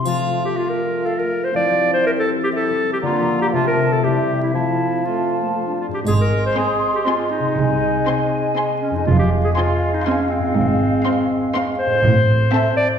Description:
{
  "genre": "cinematic, playful, whimsical film cue",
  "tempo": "121 BPM",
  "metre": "3/4",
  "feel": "straight",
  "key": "F major, Ab major from 6.1 s",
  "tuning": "A4 = 440 Hz",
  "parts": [
    { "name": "clear clarinet", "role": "second line", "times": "0.0-12.9 s", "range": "C4 to D5", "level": "-21 LUFS", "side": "equal", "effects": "none" },
    { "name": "mellow large flute ensemble", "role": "second line", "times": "0.0-12.6 s", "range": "E5 to C6", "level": "-26 LUFS", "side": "equal", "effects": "none" },
    { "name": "mellow French horn section", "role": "sustained chords", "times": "0.0-6.1 s", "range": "G3 to F4", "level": "-25 LUFS", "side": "equal", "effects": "none" },
    { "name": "concert harp", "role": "arpeggios", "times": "0.0-13.0 s", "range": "F2 to C5", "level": "-25 LUFS", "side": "left 5 dB", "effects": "none" },
    { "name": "warm bassoon", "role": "accompaniment", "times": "0.1-12.7 s", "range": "C3 to A3", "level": "-24 LUFS", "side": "right 3 dB", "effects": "none" },
    { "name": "triangle", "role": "percussion", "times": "0.1-1.0, 6.1-7.0 s", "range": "none", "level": "-37 LUFS", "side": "right 1 dB", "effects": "none" },
    { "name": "rich studio cello section", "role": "bass", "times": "6.1-12.4 s", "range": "F2 to C3", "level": "-21 LUFS", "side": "right 1 dB", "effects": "none" },
    { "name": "rich studio double bass section", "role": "bass", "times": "6.1-12.4 s", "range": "F1 to C2", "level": "-22 LUFS", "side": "right 2 dB", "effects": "none" },
    { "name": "clear studio violin section", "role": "melody", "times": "6.6-12.9 s", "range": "A5 to C6", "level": "-29 LUFS", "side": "left 3 dB", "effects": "none" },
    { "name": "rich studio violin section", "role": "second line", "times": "6.6-12.9 s", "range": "E5 to Ab5", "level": "-31 LUFS", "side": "left 2 dB", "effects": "none" },
    { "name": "rich studio viola section", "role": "accompaniment", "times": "6.6-12.9 s", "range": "C4", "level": "-28 LUFS", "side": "right 3 dB", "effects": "none" }
  ],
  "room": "wet recital hall reverb, RT60 1.4 s",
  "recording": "heard from further back in the room",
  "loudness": "-16 LUFS",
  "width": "side -8 dB against mid",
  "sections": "0.0-6.1 A section; 6.1-13.0 B section",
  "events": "none",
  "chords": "0.1 F; 1.5 C/F; 3.0 Bb/D; 3.5 F/C; 4.0 C; 4.5 F; 6.1 Ab; 7.6 Ab/C; 9.1 Fm; 10.6 Fm/Ab; 12.0 Am"
}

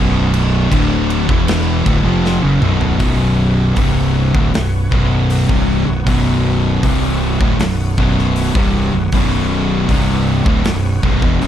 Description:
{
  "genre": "stoner and doom metal",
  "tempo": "78 BPM",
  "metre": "4/4",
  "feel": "straight",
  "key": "B minor",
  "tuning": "A4 = 442 Hz",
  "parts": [
    { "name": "overdriven tonewheel organ", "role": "sustained chords", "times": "0.0-11.5 s", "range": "B3 to F#5", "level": "-30 LUFS", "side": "equal", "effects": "slow rotary speaker, chorus vibrato" },
    { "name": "distorted electric guitar", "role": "riff", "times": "0.0-11.5 s", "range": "B1 to E#3", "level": "-21 LUFS", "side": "equal", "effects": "overdrive" },
    { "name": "thick fuzz guitar", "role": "riff", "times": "0.0-11.5 s", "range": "B1 to E#3", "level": "-19 LUFS", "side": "left 8 dB", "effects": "distortion" },
    { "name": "thick fuzz guitar", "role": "riff", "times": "0.0-11.5 s", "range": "B1 to E#3", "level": "-19 LUFS", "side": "right 6 dB", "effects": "distortion" },
    { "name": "fuzz fingered electric bass", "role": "bass", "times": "0.0-11.5 s", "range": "B0 to F#1", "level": "-19 LUFS", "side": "equal", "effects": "overdrive, tube saturation" },
    { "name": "big rock drum kit", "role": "drums", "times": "0.3-11.5 s", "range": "crash cymbal, hi-hat, kick drum, snare drum, toms", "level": "-19 LUFS", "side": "equal", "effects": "none" }
  ],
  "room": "little or no reverb",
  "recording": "dark, warm production",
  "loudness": "-12 LUFS",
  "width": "side -10 dB against mid",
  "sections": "0.0-3.0 A section; 3.0-11.5 B section",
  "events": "drum fill 2.2-3.0",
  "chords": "0.0 Bm"
}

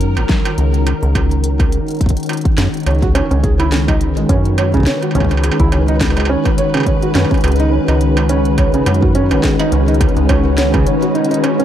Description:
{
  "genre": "IDM",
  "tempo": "105 BPM",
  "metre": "4/4",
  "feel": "swing 56% on 16ths",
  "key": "unclear",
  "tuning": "A4 = 439 Hz",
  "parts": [
    { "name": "soft string machine", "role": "sustained chords", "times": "0.0-11.6 s", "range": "D#3 to B4", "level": "-18 LUFS", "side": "left 1 dB", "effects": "ensemble chorus" },
    { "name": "deep acid bass", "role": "bass", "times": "0.0-10.9 s", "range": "G#1 to F#2", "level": "-15 LUFS", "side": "equal", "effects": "tube saturation" },
    { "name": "industrial drum kit", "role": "drums", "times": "0.0-11.6 s", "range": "hi-hat, snare drum, struck metal", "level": "-23 LUFS", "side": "right 2 dB", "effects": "digital delay" },
    { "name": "electronic kick drum", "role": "drums", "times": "0.3-10.8 s", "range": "none", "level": "-16 LUFS", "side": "equal", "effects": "none" },
    { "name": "felt-muted upright piano", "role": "arpeggios", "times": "2.9-11.6 s", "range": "C#3 to C#5", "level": "-19 LUFS", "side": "right 3 dB", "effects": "vintage 12-bit sampler grit, digital delay" }
  ],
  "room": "light reverb",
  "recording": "dark, warm production",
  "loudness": "-12 LUFS",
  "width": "side -10 dB against mid",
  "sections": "0.0-11.6 A section",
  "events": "none",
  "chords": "0.0 F#69; 2.9 C#7(no3); 7.4 Badd9"
}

